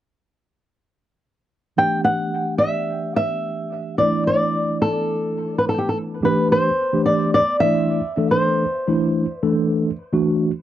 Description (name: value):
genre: jazz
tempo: 108 BPM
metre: 4/4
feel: straight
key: A dorian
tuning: A4 = 440 Hz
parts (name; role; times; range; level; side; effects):
- flamenco guitar; melody; 1.8-10.0 s; G4 to G5; -20 LUFS; equal; none
- mellow tine electric piano; accompaniment; 1.8-10.5 s; E3 to A4; -21 LUFS; equal; medium stereo tremolo
room: light reverb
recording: dry, close 1970s-style studio recording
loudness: -18 LUFS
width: side -12 dB against mid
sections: 1.8-6.2 A section; 6.2-10.6 B section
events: none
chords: 1.8 A7sus4; 6.2 Am7